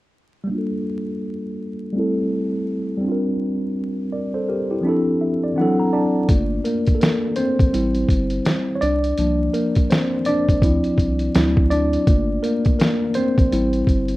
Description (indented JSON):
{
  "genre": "lo-fi hip hop",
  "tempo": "83 BPM",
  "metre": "4/4",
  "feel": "swing 61% on 16ths",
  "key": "G dorian",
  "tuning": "A4 = 440 Hz",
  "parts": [
    { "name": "mellow tine electric piano", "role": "accompaniment", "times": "0.4-14.2 s", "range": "E3 to Bb5", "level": "-19 LUFS", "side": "equal", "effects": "medium stereo tremolo, cassette tape, low-pass filter, plate reverb" },
    { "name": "soft dub sub bass", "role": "bass", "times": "6.3-14.2 s", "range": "G1 to D2", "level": "-23 LUFS", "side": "equal", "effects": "none" },
    { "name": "lo-fi sampler-style drum kit", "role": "drums", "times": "6.3-14.2 s", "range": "hi-hat, kick drum, snare drum", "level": "-19 LUFS", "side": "equal", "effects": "none" }
  ],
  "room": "moderate studio reverb, RT60 0.6 s",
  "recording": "rough home demo mix, vinyl crackle",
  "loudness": "-17 LUFS",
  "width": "side -18 dB against mid",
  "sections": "0.5-6.3 A section; 6.3-14.2 B section",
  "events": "filter sweep on tine electric piano 0.5-6.3; tine electric piano fill 4.8-6.3; tine electric piano solo 6.3-14.2",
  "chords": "0.5 Gm7; 1.9 Am7; 3.0 C9sus4; 4.8 Dm7; 5.6 D7; 6.3 Gm7; 7.7 Am7; 8.8 C9sus4; 10.6 Dm7; 11.3 D7; 12.1 Gm7; 13.5 Am7",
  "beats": "| 0.50 1.23 1.95 2.67 | 3.40 4.12 4.84 5.56 | 6.29 7.01 7.73 8.46 | 9.18 9.90 10.62 11.35 | 12.07 12.79 13.52"
}